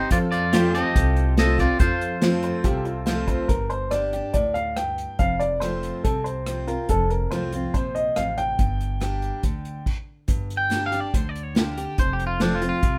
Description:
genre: honky-tonk and classic country.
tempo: 141 BPM.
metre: 4/4.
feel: straight.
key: G minor.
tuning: A4 = 440 Hz.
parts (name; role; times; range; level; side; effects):
twangy electric guitar; melody; 0.0-3.0, 10.6-13.0 s; D4 to G5; -28 LUFS; equal; none.
bright concert grand piano; accompaniment; 0.0-3.4 s; F4 to C5; -35 LUFS; equal; none.
picked steel-string acoustic guitar; accompaniment; 0.0-13.0 s; F2 to G4; -30 LUFS; equal; none.
pedal steel guitar; sustained chords; 0.0-3.5 s; F4 to C5; -37 LUFS; equal; none.
upright bass; bass; 0.1-13.0 s; F1 to F2; -30 LUFS; equal; none.
unplugged drum kit; drums; 0.1-12.9 s; crash cymbal, hi-hat, kick drum, rim click, snare drum; -26 LUFS; equal; none.
warm upright piano; second line; 2.4-9.8 s; F4 to G5; -29 LUFS; equal; none.
room: light reverb.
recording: none.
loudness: -23 LUFS.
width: mono.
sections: 0.0-3.5 A section; 3.5-10.3 B section; 10.3-13.0 C section.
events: upright piano solo 3.5-10.3; clean electric guitar solo 10.3-13.0.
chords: 0.1 F; 3.5 G5; 5.2 F; 8.6 Gm; 12.0 F.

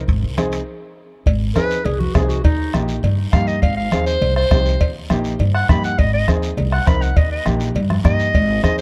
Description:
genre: latin, cumbia.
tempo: 203 BPM.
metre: 4/4.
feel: straight.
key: Ab major.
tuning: A4 = 440 Hz.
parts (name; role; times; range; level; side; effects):
upright bass; bass; 0.0-8.8 s; Ab1 to G2; -22 LUFS; equal; none.
bombo; percussion; 0.1-8.8 s; none; -21 LUFS; equal; none.
guiro; percussion; 0.1-8.8 s; none; -39 LUFS; equal; none.
timbales and cowbell; percussion; 0.1-8.5 s; none; -32 LUFS; equal; none.
clear upright piano; accompaniment; 0.4-8.8 s; Bb3 to Bb4; -28 LUFS; equal; none.
congas; percussion; 0.4-8.8 s; none; -27 LUFS; equal; none.
clear clarinet; melody; 1.6-8.8 s; Eb4 to Cb6; -24 LUFS; equal; none.
room: little or no reverb.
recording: dark, warm production.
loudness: -18 LUFS.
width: mono.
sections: 0.0-1.3 A section; 1.3-8.8 B section.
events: stop 0.7-1.3; clarinet solo 1.3-8.8.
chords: 0.0 Ab; 2.4 Eb; 3.6 Ab; 4.8 Eb; 6.0 Ab; 7.2 Eb.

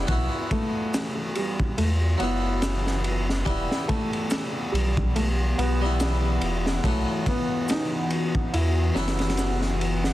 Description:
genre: trip hop.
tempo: 71 BPM.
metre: 4/4.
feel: swing 56% on 16ths.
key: unclear.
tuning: A4 = 440 Hz.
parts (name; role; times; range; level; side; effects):
harpsichord; accompaniment; 0.0-10.1 s; E3 to F#4; -32 LUFS; equal; harmonic tremolo, vintage 12-bit sampler grit, tape echo.
warm sub bass; bass; 0.0-10.1 s; E1 to E2; -25 LUFS; equal; none.
dark analog pad; sustained chords; 0.1-10.1 s; E3 to F#5; -32 LUFS; left 2 dB; chorus.
crunchy breakbeat drum kit; drums; 0.1-10.1 s; kick drum, ride cymbal, snare drum; -28 LUFS; equal; none.
felt-muted upright piano; melody; 0.5-9.3 s; G3 to E4; -30 LUFS; equal; dub echo.
maracas; percussion; 0.9-9.6 s; none; -40 LUFS; left 2 dB; none.
room: small room reverb.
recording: dense, heavily limited modern master, vinyl crackle.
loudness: -22 LUFS.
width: side -15 dB against mid.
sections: 0.0-10.1 A section.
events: none.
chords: 0.1 Bsus4; 3.5 Em; 6.8 Bsus4.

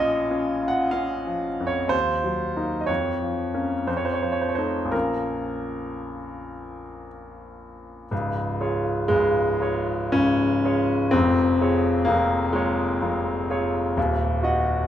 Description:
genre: classical, romantic nocturne for solo piano.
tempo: 54-66 BPM.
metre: 3/4.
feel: rubato.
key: Bb minor, Db major from 8.1 s.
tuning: A4 = 438 Hz.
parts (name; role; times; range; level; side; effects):
clear grand piano; solo; 0.0-14.9 s; Db1 to Gb5; -22 LUFS; equal; none.
room: moderate recital hall reverb, RT60 1.5 s.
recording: none.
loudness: -21 LUFS.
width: side -11 dB against mid.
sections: 0.0-8.1 A section; 8.1-14.9 B section.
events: none.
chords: 0.0 Bbm; 1.9 Ebm; 2.9 Bbm/F; 3.9 F7; 4.9 Bbm; 8.1 Db; 11.1 Db/F; 14.0 Ebm.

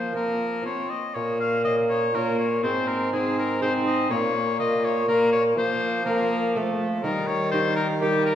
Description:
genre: classical, renaissance-style consort dance.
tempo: 122 BPM.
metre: 3/4.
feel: straight.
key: Bb minor.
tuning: A4 = 439 Hz.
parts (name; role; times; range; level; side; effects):
clear oboe; melody; 0.0-8.3 s; G4 to F5; -27 LUFS; left 4 dB; none.
lute; accompaniment; 0.0-8.3 s; Ab2 to Ab4; -28 LUFS; right 2 dB; none.
rich viola; accompaniment; 0.0-8.3 s; G3 to C4; -27 LUFS; left 1 dB; none.
warm bassoon; bass; 0.0-8.3 s; Ab2 to F3; -27 LUFS; right 1 dB; none.
room: wet recital hall reverb, RT60 1.5 s.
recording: heard from further back in the room.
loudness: -21 LUFS.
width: side -10 dB against mid.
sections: 0.0-1.2 A section; 1.2-8.3 A section.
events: none.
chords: 0.0 Fsus4; 0.7 F5; 1.2 Bbm; 2.6 Ab; 4.1 Bbm; 5.6 Fsus4; 6.5 F; 7.0 Eb.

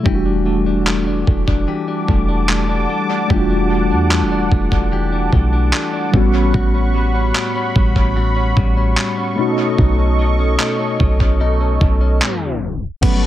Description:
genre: contemporary R&B.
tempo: 74 BPM.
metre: 4/4.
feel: straight.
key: E dorian.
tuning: A4 = 440 Hz.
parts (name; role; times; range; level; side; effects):
mellow tine electric piano; accompaniment; 0.0-13.3 s; F#3 to F#4; -21 LUFS; equal; medium stereo tremolo.
direct-recorded clean electric guitar; arpeggios; 0.0-13.3 s; A2 to B4; -23 LUFS; left 5 dB; dub echo.
warm analog pad; sustained chords; 0.1-13.3 s; G3 to D6; -23 LUFS; equal; chorus, sidechain pumping.
clean 808-style bass; bass; 0.1-13.3 s; E1 to E2; -17 LUFS; equal; none.
dusty soul sampler-style drum kit; drums; 0.1-13.2 s; crash cymbal, handclaps, hi-hat, kick drum; -20 LUFS; equal; dub echo.
warm concert grand piano; melody; 12.6-13.3 s; F#5; -30 LUFS; left 3 dB; dub echo.
room: light reverb.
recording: echo-heavy mix, tape stop.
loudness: -14 LUFS.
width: side -13 dB against mid.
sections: 0.0-13.0 A section.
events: tape stop 12.2-13.0.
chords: 0.1 Em11; 6.1 A13; 9.4 B9.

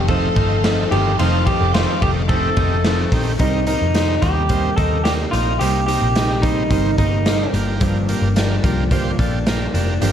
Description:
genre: jangly indie pop.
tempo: 109 BPM.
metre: 4/4.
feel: straight.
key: unclear.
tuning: A4 = 439 Hz.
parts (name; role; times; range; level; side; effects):
electric guitar through a small old amp; melody; 0.0-7.5 s; Eb4 to A4; -21 LUFS; right 1 dB; none.
fingerpicked steel-string acoustic guitar; accompaniment; 0.0-10.1 s; G2 to A4; -26 LUFS; right 7 dB; none.
string machine, violas; sustained chords; 0.0-3.4 s; A4 to D6; -29 LUFS; left 1 dB; ensemble chorus.
direct-recorded clean electric guitar; arpeggios; 0.0-10.1 s; F2 to Eb4; -24 LUFS; left 7 dB; wide subtle chorus.
vintage muted picked electric bass; bass; 0.0-10.1 s; F1 to F2; -21 LUFS; equal; none.
combo organ; accompaniment; 0.1-10.1 s; A3 to C5; -28 LUFS; right 5 dB; none.
raw garage drum kit; drums; 0.1-10.1 s; hi-hat, kick drum, ride cymbal, snare drum; -21 LUFS; equal; none.
room: light reverb.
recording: none.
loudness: -15 LUFS.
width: side -9 dB against mid.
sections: 0.0-3.4 A section; 3.4-10.1 B section.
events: none.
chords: 0.0 F7; 3.4 Cm7; 7.5 Gm7.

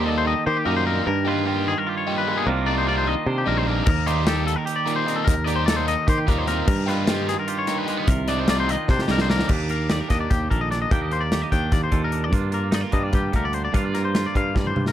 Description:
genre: math rock and midwest emo.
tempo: 299 BPM (eighths).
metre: 7/8.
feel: straight.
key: Eb lydian.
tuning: A4 = 439 Hz.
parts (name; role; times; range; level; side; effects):
twangy electric guitar; accompaniment; 0.0-14.9 s; Eb2 to A4; -27 LUFS; right 6 dB; wide subtle chorus, plate reverb.
twangy electric guitar; arpeggios; 0.0-14.9 s; G4 to G5; -26 LUFS; left 6 dB; plate reverb.
biting overdriven guitar; riff; 0.0-9.5 s; Eb3 to G4; -27 LUFS; left 1 dB; none.
picked electric bass; bass; 0.0-14.9 s; Bb1 to Eb3; -25 LUFS; equal; none.
modern studio drum kit; drums; 3.9-14.9 s; crash cymbal, hi-hat, kick drum, snare drum, toms; -23 LUFS; equal; none.
room: light reverb.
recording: dark, warm production.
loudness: -20 LUFS.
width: side -11 dB against mid.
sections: 0.0-9.5 A section; 9.5-14.9 B section.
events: drum fill 8.9-9.5, 14.5-14.9.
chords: 0.0 Eb6; 1.1 G7alt; 2.5 Cm11; 3.9 Eb6; 6.7 G7alt; 8.1 Cm11; 9.5 Ebmaj7; 12.3 Gm7.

